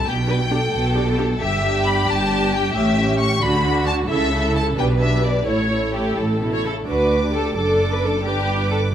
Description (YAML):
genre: quick classical-period movement for string orchestra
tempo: 88 BPM (dotted quarters)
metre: 6/8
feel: straight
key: D major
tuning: A4 = 440 Hz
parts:
  - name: rich studio violin section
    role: melody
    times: 0.0-8.9 s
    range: C#5 to D6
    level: -24 LUFS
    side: left 3 dB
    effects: none
  - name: rich studio violin section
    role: second line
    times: 0.0-8.8 s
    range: F#4 to C#5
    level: -23 LUFS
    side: left 1 dB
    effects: none
  - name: rich studio cello section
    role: bass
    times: 0.1-8.9 s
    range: D2 to D3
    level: -24 LUFS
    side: right 1 dB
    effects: none
  - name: rich studio double bass section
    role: bass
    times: 0.1-8.9 s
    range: F#1 to D2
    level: -24 LUFS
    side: right 1 dB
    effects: none
  - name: rich studio viola section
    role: accompaniment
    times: 0.3-8.9 s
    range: C#4 to B4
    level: -24 LUFS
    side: right 2 dB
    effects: none
room: moderate scoring stage reverb, RT60 1.4 s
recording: none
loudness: -17 LUFS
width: side -10 dB against mid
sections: 0.0-6.9 A section; 6.9-8.9 B section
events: none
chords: 0.1 G/B; 1.4 Em7/G; 2.8 A7; 3.4 D; 4.1 A/C#; 4.8 G/B; 5.5 A; 6.9 D; 7.6 D/F#; 8.3 G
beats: | 0.07 0.74 | 1.41 2.08 | 2.75 3.42 | 4.10 4.78 | 5.47 6.18 | 6.88 7.57 | 8.26 8.93